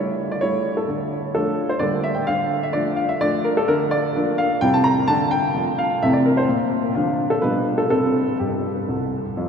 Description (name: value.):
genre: classical-period piano sonatina.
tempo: 128 BPM.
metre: 3/4.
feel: straight.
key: D minor.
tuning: A4 = 440 Hz.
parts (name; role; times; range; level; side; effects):
warm grand piano; solo; 0.0-9.5 s; C2 to Bb5; -18 LUFS; equal; none.
room: wet cathedral reverb, RT60 6.8 s.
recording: minimal, uncompressed stereo recording.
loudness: -18 LUFS.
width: side -6 dB against mid.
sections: 0.0-9.4 A section.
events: none.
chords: 0.0 A7; 0.9 Dm; 1.8 Gm/D; 2.3 Dm; 3.7 Bb/D; 4.6 C; 5.1 Dm; 6.0 Am/C; 6.5 Bb; 7.4 G7/B; 7.9 C5.